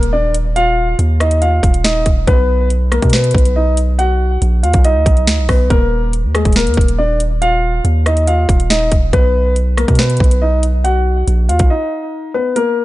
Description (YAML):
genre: hip hop, drill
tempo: 140 BPM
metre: 4/4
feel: half-time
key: unclear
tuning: A4 = 445 Hz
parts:
  - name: dark grand piano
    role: melody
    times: 0.0-12.8 s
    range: Ab3 to F#5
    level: -16 LUFS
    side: left 1 dB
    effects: digital delay
  - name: long sustained 808-style bass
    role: bass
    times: 0.0-11.7 s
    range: Eb1 to B2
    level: -14 LUFS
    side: equal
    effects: none
  - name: drill drum kit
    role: drums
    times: 0.0-12.7 s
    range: hi-hat, kick drum, rim click, snare drum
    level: -14 LUFS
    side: equal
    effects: none
  - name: impact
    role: sound effects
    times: 0.4-0.6 s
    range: none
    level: barely audible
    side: none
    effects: none
room: digital ambience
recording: nothing above 10.9 kHz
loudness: -11 LUFS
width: side -16 dB against mid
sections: 0.0-12.8 A section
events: impact 0.0-0.6; break 11.7-12.6; kick muted 12.6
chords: 0.0 Ebsus2; 2.3 B; 5.7 Ebsus2; 9.1 B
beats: 0.13 | 0.56 0.99 1.42 1.85 | 2.27 2.70 3.13 3.56 | 3.99 4.42 4.85 5.28 | 5.70 6.13 6.56 6.99 | 7.42 7.85 8.28 8.70 | 9.13 9.56 9.99 10.42 | 10.85 11.28 11.70 12.13 | 12.56